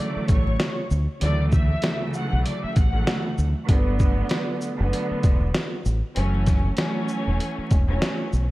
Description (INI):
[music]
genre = hip hop, boom-bap hip-hop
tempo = 97 BPM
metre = 4/4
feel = swing 58% on 16ths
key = D major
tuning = A4 = 440 Hz
[part]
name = warm studio violin section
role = melody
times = 0.0-3.2 s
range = C#5 to F#6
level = -32 LUFS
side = left 1 dB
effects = high-pass filter, low-pass filter, digital delay
[part]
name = warm studio string section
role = accompaniment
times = 0.0-8.5 s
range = D2 to C#4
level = -27 LUFS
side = right 1 dB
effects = high-pass filter, low-pass filter
[part]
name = deep dub fingered electric bass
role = bass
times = 0.2-8.5 s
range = E1 to D2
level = -23 LUFS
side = equal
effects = none
[part]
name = trip hop sampler-style drum kit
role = drums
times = 0.3-8.5 s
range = hi-hat, kick drum, shaker, snare drum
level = -23 LUFS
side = equal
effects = none
[sound]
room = little or no reverb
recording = dark, warm production, vinyl crackle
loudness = -20 LUFS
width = side -18 dB against mid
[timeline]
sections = 0.0-8.5 A section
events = none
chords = 0.0 Dmaj7; 3.7 Gmaj7; 6.2 F#m7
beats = 0.59 | 1.21 1.83 2.45 3.07 | 3.69 4.30 4.92 5.54 | 6.16 6.78 7.40 8.02